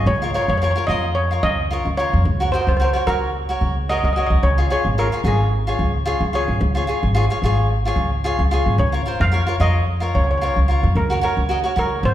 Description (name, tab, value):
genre	calypso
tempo	110 BPM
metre	4/4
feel	swing 54% on 16ths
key	Db major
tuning	A4 = 440 Hz
part	cavaquinho	accompaniment	0.0-12.0 s	F4 to Eb5	-23 LUFS	equal	none
part	upright bass	bass	0.0-12.1 s	Ab1 to F2	-19 LUFS	equal	none
part	steel pan	melody	0.1-12.1 s	Ab4 to F5	-23 LUFS	equal	none
room	wet recital hall reverb, RT60 1.6 s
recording	recorded in a church or concert hall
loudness	-17 LUFS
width	side -12 dB against mid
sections	0.0-12.1 A section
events	none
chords	0.1 Bbm/Db; 2.3 Gb/Db; 4.4 Db; 8.8 Bbm/Db; 11.0 Gb/Db